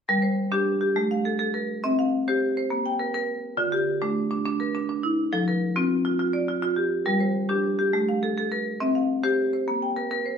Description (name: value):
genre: southern african traditional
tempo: 138 BPM (dotted quarters)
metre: 12/8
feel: straight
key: G equiheptatonic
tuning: A4 = 440 Hz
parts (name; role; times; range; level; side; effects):
- marimba with hard mallets; arpeggios; 0.1-10.4 s; D3 to G5; -22 LUFS; equal; none
room: wet studio reverb, RT60 0.8 s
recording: band playing live in one room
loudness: -22 LUFS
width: side -7 dB against mid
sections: 0.1-10.4 A section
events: none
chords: 0.1 Gm; 1.0 Gm9/A; 1.8 C; 2.7 Gmadd11/Bb; 3.6 Dm; 5.3 F; 7.1 Gm; 7.9 Gm9/A; 8.8 C; 9.7 Gmadd11/Bb